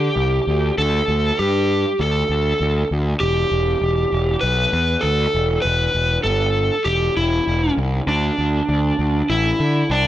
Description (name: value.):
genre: post-rock.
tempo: 99 BPM.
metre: 4/4.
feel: straight.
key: E minor.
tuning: A4 = 441 Hz.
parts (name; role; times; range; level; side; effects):
overdriven slide guitar; melody; 0.0-10.1 s; D4 to B4; -19 LUFS; equal; none.
fuzz picked electric bass; bass; 0.0-10.1 s; E1 to D3; -20 LUFS; equal; overdrive.
room: light reverb, digital ambience.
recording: none.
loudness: -16 LUFS.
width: side -13 dB against mid.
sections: 0.0-10.1 A section.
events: none.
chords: 0.0 Dsus4; 3.2 Em; 8.1 N.C..